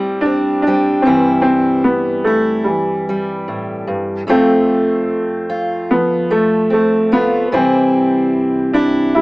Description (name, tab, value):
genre	acoustic folk-pop ballad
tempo	74 BPM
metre	4/4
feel	straight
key	unclear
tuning	A4 = 440 Hz
part	clear upright piano	melody	0.0-9.2 s	E3 to E4	-14 LUFS	equal	none
part	fingerpicked steel-string acoustic guitar	accompaniment	0.0-9.2 s	F2 to G4	-17 LUFS	equal	none
room	moderate studio ambience, RT60 0.5 s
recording	small speaker sound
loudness	-13 LUFS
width	side -22 dB against mid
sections	0.0-9.2 A section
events	none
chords	0.0 Am7; 1.1 Gsus2; 4.3 F; 7.5 C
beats	0.25 | 1.06 1.86 2.67 3.48 | 4.28 5.09 5.90 6.71 | 7.52 8.33 9.15